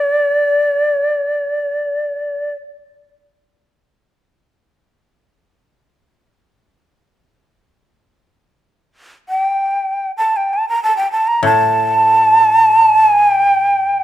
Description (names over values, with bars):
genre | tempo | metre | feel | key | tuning
japanese traditional, Japanese chamber music | free time | none | none | unclear | A4 = 440 Hz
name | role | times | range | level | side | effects
breathy bright shakuhachi | melody | 0.0-14.0 s | D5 to Bb5 | -12 LUFS | right 1 dB | none
koto | accompaniment | 11.4-14.0 s | A2 | -20 LUFS | left 3 dB | none
room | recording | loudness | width
moderate recital hall reverb, RT60 1.4 s | none | -12 LUFS | side -12 dB against mid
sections
0.0-7.9 A section; 7.9-14.0 A section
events
none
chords
none